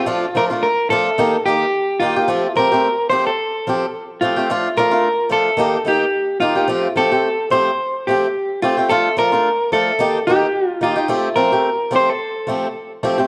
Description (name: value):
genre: highlife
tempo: 109 BPM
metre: 4/4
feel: swing 54% on 16ths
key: unclear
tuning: A4 = 441 Hz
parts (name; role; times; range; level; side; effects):
- clean electric guitar; melody; 0.0-12.9 s; F4 to C5; -20 LUFS; equal; none
- picked swing-style acoustic guitar; accompaniment; 0.0-13.3 s; Eb3 to G4; -22 LUFS; equal; none
room: moderate echo chamber reverb, RT60 1.7 s, small room reverb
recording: none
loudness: -18 LUFS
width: mono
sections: 0.0-13.3 A section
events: none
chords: 0.1 Bbmaj7/F; 1.2 Eb; 2.3 Fadd9; 4.5 Bbmaj7; 5.6 Eb; 6.7 Fadd9; 8.9 Bbmaj7; 10.0 Eb; 11.1 Fadd9